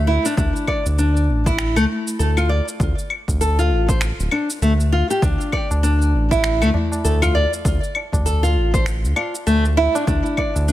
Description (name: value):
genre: organic downtempo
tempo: 99 BPM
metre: 4/4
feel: swing 59% on 16ths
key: D minor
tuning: A4 = 440 Hz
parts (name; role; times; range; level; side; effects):
- round analog bass; bass; 0.0-10.7 s; D1 to D2; -18 LUFS; equal; sidechain pumping
- nylon-string guitar; arpeggios; 0.1-10.7 s; A3 to D5; -20 LUFS; left 1 dB; digital delay
- electronic shaker, claves and finger snaps; drums; 0.3-10.7 s; none; -27 LUFS; left 2 dB; overdrive
- electronic kick drum; drums; 0.4-10.5 s; none; -22 LUFS; equal; overdrive
- tabla; percussion; 5.5-10.7 s; none; -28 LUFS; equal; none
room: light reverb, small room reverb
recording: none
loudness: -16 LUFS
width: side -14 dB against mid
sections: 0.0-10.7 A section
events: none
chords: 0.0 D5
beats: | 0.38 0.98 1.59 2.20 | 2.80 3.41 4.01 4.62 | 5.23 5.83 6.44 7.04 | 7.65 8.26 8.86 9.47 | 10.07 10.68